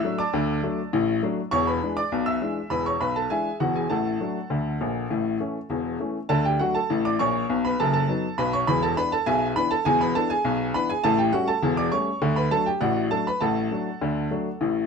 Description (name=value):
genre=ragtime piano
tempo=101 BPM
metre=2/4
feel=straight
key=D major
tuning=A4 = 442 Hz
part: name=clear upright piano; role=solo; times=0.0-14.9 s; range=E1 to E6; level=-22 LUFS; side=equal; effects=none
room=light reverb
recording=none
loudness=-22 LUFS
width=side -5 dB against mid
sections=0.0-6.3 A section; 6.3-14.9 B section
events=none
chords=0.0 D; 1.5 E7; 3.9 D/A; 5.1 A; 6.3 D; 7.5 B7; 8.7 E7; 11.0 A7; 12.2 D; 13.4 D/A